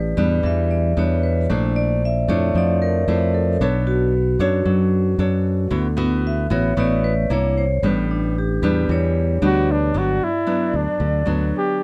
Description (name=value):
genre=bossa nova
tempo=114 BPM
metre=4/4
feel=straight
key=unclear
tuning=A4 = 445 Hz
part: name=nylon-string guitar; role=accompaniment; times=0.0-11.8 s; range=G2 to C#5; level=-26 LUFS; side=equal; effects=none
part: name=vibraphone with medium hard mallets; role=accompaniment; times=0.0-10.0 s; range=D4 to E5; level=-26 LUFS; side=equal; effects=none
part: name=fingered electric bass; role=bass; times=0.0-11.5 s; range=G1 to F#2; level=-22 LUFS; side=equal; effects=none
part: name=warm flugelhorn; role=melody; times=9.5-11.8 s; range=D4 to G4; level=-24 LUFS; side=equal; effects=none
part: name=mellow hollow jazz flute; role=second line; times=10.0-11.8 s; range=D5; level=-30 LUFS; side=equal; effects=none
room=little or no reverb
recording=close, detailed microphones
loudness=-19 LUFS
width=mono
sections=0.0-9.9 A section; 9.9-11.8 B section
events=vibraphone solo 0.0-9.9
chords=0.0 A9sus4; 1.5 Bbmaj7#11; 3.6 Bm9; 5.7 D69; 7.3 C9; 7.8 A9sus4; 9.9 Gmaj7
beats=0.44 0.96 | 1.49 2.02 2.55 3.08 | 3.60 4.13 4.66 5.19 | 5.72 6.24 6.77 7.30 | 7.83 8.36 8.88 9.41 | 9.94 10.47 11.00 11.53